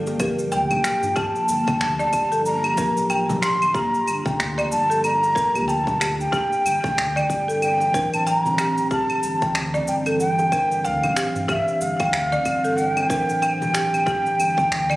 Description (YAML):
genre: organic downtempo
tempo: 93 BPM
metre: 4/4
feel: swing 59% on 16ths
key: unclear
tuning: A4 = 444 Hz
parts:
  - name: muted felt-like synth keys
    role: accompaniment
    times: 0.0-15.0 s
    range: E3 to C5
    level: -31 LUFS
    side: equal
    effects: chorus, sidechain pumping
  - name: ethereal airy pad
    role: sustained chords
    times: 0.0-15.0 s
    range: E3 to G4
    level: -31 LUFS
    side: equal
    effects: ensemble chorus, built-in reverb, phaser, sidechain pumping
  - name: warm sub bass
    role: bass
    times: 0.0-15.0 s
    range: D1 to G2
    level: -32 LUFS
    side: equal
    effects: sidechain pumping
  - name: electronic shaker, claves and finger snaps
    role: drums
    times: 0.1-15.0 s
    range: none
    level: -27 LUFS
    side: equal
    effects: overdrive
  - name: bongos and congas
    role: percussion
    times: 0.1-15.0 s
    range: none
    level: -32 LUFS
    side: left 1 dB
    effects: none
  - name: folk marimba with hard mallets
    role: arpeggios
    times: 0.2-15.0 s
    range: G4 to G5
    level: -27 LUFS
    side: equal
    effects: tape echo
  - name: electronic kick drum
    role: drums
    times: 0.2-14.7 s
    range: none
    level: -28 LUFS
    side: equal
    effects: overdrive
  - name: breathy mellow bansuri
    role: melody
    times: 0.5-15.0 s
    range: E5 to C6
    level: -21 LUFS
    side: equal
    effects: tape echo
room: moderate lush hall reverb, RT60 2.5 s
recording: recorded on a phone in the room, studio reverb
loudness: -19 LUFS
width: side -18 dB against mid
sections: 0.0-15.0 A section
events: none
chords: 0.0 Gm7; 6.3 Cadd9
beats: 0.52 | 1.17 1.81 2.46 3.10 | 3.75 4.39 5.04 5.68 | 6.33 6.97 7.62 8.26 | 8.91 9.55 10.20 10.84 | 11.49 12.13 12.78 13.42 | 14.07 14.71